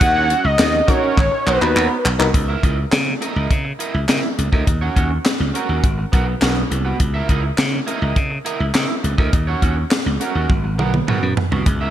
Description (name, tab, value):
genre	early-eighties boogie funk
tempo	103 BPM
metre	4/4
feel	straight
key	C# dorian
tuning	A4 = 440 Hz
part	fat analog lead	melody	0.0-2.0 s	B4 to F#5	-18 LUFS	equal	ping-pong delay
part	electric guitar at the edge of break-up	riff	0.0-11.9 s	B3 to E5	-24 LUFS	right 4 dB	analog chorus
part	glassy slap bass	bass	0.0-11.9 s	G#1 to C#3	-20 LUFS	equal	none
part	tight funk drum kit	drums	0.0-11.8 s	handclaps, hi-hat, kick drum, snare drum, toms	-19 LUFS	equal	gated reverb
part	FM electric piano	accompaniment	0.9-2.3 s	B3 to A#5	-24 LUFS	left 3 dB	chorus
room	moderate plate reverb, RT60 2.0 s, small room ambience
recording	bright 1980s-style digital production, cassette tape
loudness	-16 LUFS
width	side -11 dB against mid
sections	0.0-2.3 A section; 2.3-11.9 B section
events	drum fill 1.2-2.3, 10.5-11.7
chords	0.0 D#m7; 1.2 G#m9 (rootless); 2.3 C#m69; 4.7 D#m7; 5.8 G#m9; 7.0 C#m69; 9.3 D#m7; 10.5 G#m9